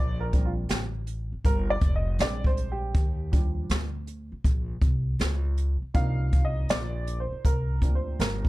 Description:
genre	hip hop, jazz-hop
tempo	80 BPM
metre	4/4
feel	swing 66% on 16ths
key	unclear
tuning	A4 = 440 Hz
part	warm upright piano	accompaniment	0.0-8.5 s	C3 to F5	-32 LUFS	right 2 dB	plate reverb
part	upright bass	bass	0.0-8.5 s	F1 to Eb2	-29 LUFS	equal	none
part	jazz brush drum kit	drums	0.3-8.5 s	hi-hat, kick drum, snare drum	-26 LUFS	equal	none
room	little or no reverb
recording	dark, warm production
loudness	-24 LUFS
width	side -18 dB against mid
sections	0.0-8.5 A section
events	upright piano solo 0.0-8.5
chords	0.0 Bb69; 2.2 Bb13; 3.0 Ebmaj9; 6.0 Cm11

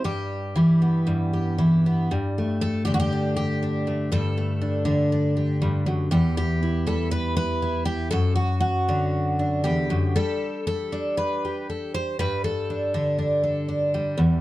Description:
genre	folk, solo fingerstyle acoustic guitar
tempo	119 BPM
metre	4/4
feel	rubato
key	G major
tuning	A4 = 440 Hz
part	picked twelve-string acoustic guitar	solo	0.0-14.4 s	E2 to C5	-21 LUFS	equal	none
room	light reverb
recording	dark, warm production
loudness	-21 LUFS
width	side -16 dB against mid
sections	0.0-2.1 A section; 2.1-14.4 B section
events	none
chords	0.0 Em/G; 2.1 Gsus2; 6.1 Em; 8.1 D/F#; 10.2 Gsus2

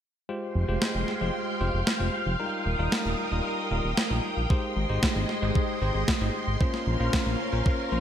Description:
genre	italo disco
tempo	114 BPM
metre	4/4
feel	straight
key	F minor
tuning	A4 = 438 Hz
part	string machine, full ensemble	sustained chords	0.3-8.0 s	Ab3 to Eb6	-31 LUFS	equal	ensemble chorus
part	bell-like tine electric piano	stabs	0.3-8.0 s	G3 to C5	-32 LUFS	left 2 dB	fast stereo tremolo, low-pass filter, ping-pong delay
part	fat analog bass	bass	0.6-8.0 s	Eb1 to Bb1	-28 LUFS	equal	tube saturation
part	electronic snare drum	drums	0.8-7.2 s	none	-30 LUFS	equal	gated reverb
part	electronic kick drum	drums	4.5-7.8 s	none	-25 LUFS	equal	none
room	moderate lush hall reverb, RT60 2.4 s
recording	bright 1980s-style digital production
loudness	-24 LUFS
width	side -9 dB against mid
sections	0.3-8.0 A section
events	none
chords	0.3 Fmadd9; 2.4 Ebadd9; 4.5 Abmaj7; 6.6 Bbmadd9

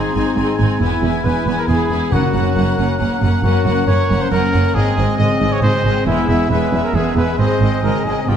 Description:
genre	cinematic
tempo	137 BPM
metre	3/4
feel	straight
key	unclear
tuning	A4 = 440 Hz
part	warm symphonic violin section	melody	0.0-8.4 s	Eb5 to Ab5	-28 LUFS	left 4 dB	none
part	mellow hollow silver concert flute	second line	0.0-8.4 s	G5 to C6	-30 LUFS	left 2 dB	none
part	warm clarinet	second line	0.0-8.4 s	B3 to E4	-28 LUFS	left 1 dB	none
part	warm oboe	second line	0.0-8.4 s	D5 to Ab5	-29 LUFS	right 1 dB	none
part	warm symphonic violin section	second line	0.0-8.4 s	B3 to E4	-28 LUFS	left 4 dB	none
part	rich symphonic viola section	accompaniment	0.0-8.4 s	Ab3 to C4	-25 LUFS	right 3 dB	none
part	mellow French horn section	sustained chords	0.0-8.4 s	B3 to Bb4	-25 LUFS	left 4 dB	none
part	concert harp	arpeggios	0.0-8.4 s	E2 to Ab4	-25 LUFS	left 8 dB	none
part	clear trumpet	stabs	0.0-8.4 s	E4 to Eb5	-22 LUFS	right 1 dB	none
part	dark symphonic cello section	bass	0.1-8.3 s	E2 to Ab2	-21 LUFS	right 2 dB	none
part	rich studio double bass section	bass	0.2-8.4 s	E1 to Ab1	-20 LUFS	right 3 dB	none
part	timpani	percussion	2.1-2.7 s	Gb2	-23 LUFS	equal	none
room	moderate scoring stage reverb, RT60 1.7 s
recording	dark, warm production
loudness	-14 LUFS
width	side -8 dB against mid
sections	0.0-8.4 A section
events	none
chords	0.0 Ab; 0.8 E; 2.1 Gb; 4.8 Ab; 6.1 E; 7.4 Ab

